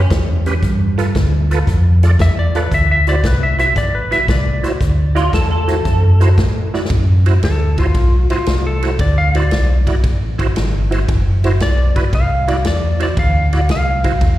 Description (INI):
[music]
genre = electric blues shuffle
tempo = 115 BPM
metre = 4/4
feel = swing 68% on 8ths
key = unclear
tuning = A4 = 440 Hz
[part]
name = electric guitar through a small old amp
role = second line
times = 0.0, 5.2-6.8 s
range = F4 to A4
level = -23 LUFS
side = right 1 dB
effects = ensemble chorus, slapback echo
[part]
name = bright tonewheel organ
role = accompaniment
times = 0.0-14.1 s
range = C#4 to D5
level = -24 LUFS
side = right 4 dB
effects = slow rotary speaker, overdrive, chorus vibrato, slapback echo
[part]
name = deep dub fingered electric bass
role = bass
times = 0.0-14.4 s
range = F#1 to A2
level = -14 LUFS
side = equal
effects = none
[part]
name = swinging big-band drum kit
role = drums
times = 0.1-14.4 s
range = hi-hat, kick drum, ride cymbal, snare drum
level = -20 LUFS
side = equal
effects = none
[part]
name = clean lap steel guitar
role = melody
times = 2.2-14.4 s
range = F4 to F5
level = -20 LUFS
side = left 1 dB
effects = slapback echo
[sound]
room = small room ambience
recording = live gig heard through the venue's PA, recital hall reverb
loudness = -12 LUFS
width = side -14 dB against mid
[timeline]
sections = 0.0-6.9 A section; 6.9-14.4 B section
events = drum fill 6.6; electric slide guitar solo 6.9-14.4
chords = 0.0 A7 (rootless); 0.6 G7(no3); 2.7 D7